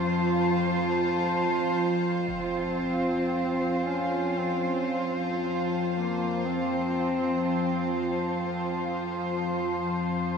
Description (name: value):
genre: dark ambient drone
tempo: free time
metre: none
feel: none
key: unclear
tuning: A4 = 441 Hz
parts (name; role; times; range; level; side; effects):
- dark chamber cello section; sustained chords; 0.0-10.4 s; F3 to C5; -29 LUFS; right 2 dB; none
- overtone-sweeping drone; drone; 0.0-10.4 s; F2 to F3; -29 LUFS; left 2 dB; chorus, built-in reverb
- dark duduk; melody; 2.3-8.6 s; Bb3 to Db4; -30 LUFS; equal; ping-pong delay
- impact; percussion; 2.3-2.5 s; none; -49 LUFS; equal; low-pass filter on sfx
room: wet huge ambient reverb, RT60 7.6 s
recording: none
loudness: -25 LUFS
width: side -6 dB against mid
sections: 0.0-2.3 A section; 2.3-10.4 B section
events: fade-in on impacts and reversed cymbals 2.3-10.4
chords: 0.0 F5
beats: free time